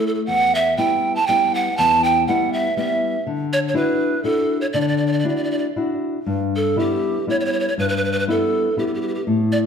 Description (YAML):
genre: italian folk, Italian serenade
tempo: 120 BPM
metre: 3/4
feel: swing 54% on 8ths, rubato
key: unclear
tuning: A4 = 440 Hz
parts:
  - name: breathy pan flute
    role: melody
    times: 0.0-9.6 s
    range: G4 to A5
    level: -19 LUFS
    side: right 3 dB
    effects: none
  - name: nylon-string guitar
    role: accompaniment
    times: 0.0-9.7 s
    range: E2 to F#4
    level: -21 LUFS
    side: left 2 dB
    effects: none
room: wet recital hall reverb, RT60 1.3 s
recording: dark, warm production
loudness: -17 LUFS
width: side -7 dB against mid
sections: 0.0-6.3 A section; 6.3-9.7 A section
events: none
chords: 0.3 Em; 3.3 Dadd9; 6.3 G6